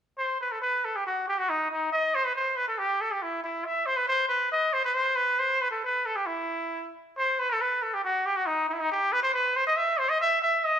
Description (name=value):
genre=klezmer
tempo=138 BPM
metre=2/4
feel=straight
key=E harmonic minor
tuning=A4 = 443 Hz
part: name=cornet with straight mute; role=solo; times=0.2-10.8 s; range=D#4 to E5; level=-24 LUFS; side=equal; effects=none
room=wet stone room reverb, RT60 1.2 s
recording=band playing live in one room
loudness=-24 LUFS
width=side -8 dB against mid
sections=0.2-7.1 A section; 7.1-10.8 A section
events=none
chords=none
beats=| 0.19 0.62 | 1.05 1.49 | 1.92 2.36 | 2.79 3.23 | 3.66 4.09 | 4.53 4.96 | 5.40 5.84 | 6.27 6.71 | 7.14 7.58 | 8.02 8.45 | 8.89 9.33 | 9.77 10.20 | 10.64